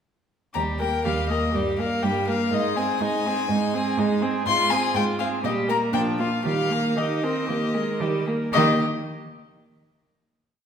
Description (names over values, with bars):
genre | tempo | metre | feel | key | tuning
quick classical-period movement for string quartet | 120 BPM | 4/4 | straight | Eb major | A4 = 440 Hz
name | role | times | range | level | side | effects
warm violin | melody | 0.5-8.8 s | D5 to C6 | -26 LUFS | left 6 dB | none
dark violin | second line | 0.5-8.8 s | D4 to Bb4 | -28 LUFS | left 1 dB | none
warm viola | accompaniment | 0.5-8.8 s | F3 to Eb4 | -26 LUFS | right 2 dB | none
warm cello | bass | 0.6-8.8 s | Eb2 to Eb3 | -28 LUFS | right 4 dB | none
room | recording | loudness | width
wet recital hall reverb, RT60 1.5 s | recorded in a church or concert hall | -21 LUFS | side -7 dB against mid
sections
0.6-8.5 theme; 8.5-10.6 final chord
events
none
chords
0.6 Eb; 1.5 Gm; 2.5 Ab; 5.4 Eb/Bb (rootless); 5.9 Bb; 6.5 Eb; 8.5 Eb5